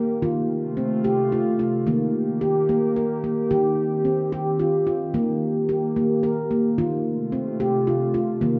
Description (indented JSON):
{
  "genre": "world meditative, meditative tuned percussion",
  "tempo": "73 BPM (dotted quarters)",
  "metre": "6/8",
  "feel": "straight",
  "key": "unclear",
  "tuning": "A4 = 439 Hz",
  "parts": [
    { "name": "warbly tape-like pad", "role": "sustained chords", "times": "0.0-8.6 s", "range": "C3 to G4", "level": "-27 LUFS", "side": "equal", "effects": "chorus, built-in reverb" },
    { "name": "handpan", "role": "arpeggios", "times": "0.0-8.6 s", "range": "Eb3 to Bb4", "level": "-24 LUFS", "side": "equal", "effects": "none" }
  ],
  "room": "wet recital hall reverb, RT60 1.5 s, small room ambience",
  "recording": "cassette tape, nothing above 8.0 kHz",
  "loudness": "-23 LUFS",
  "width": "mono",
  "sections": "0.0-8.6 A section",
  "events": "none",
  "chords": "0.2 F; 1.9 Eb; 3.5 Cm/Eb; 5.1 Eb; 6.8 F",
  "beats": "| 0.22 1.04 | 1.86 2.68 | 3.50 4.32 | 5.14 5.96 | 6.78 7.60 | 8.42"
}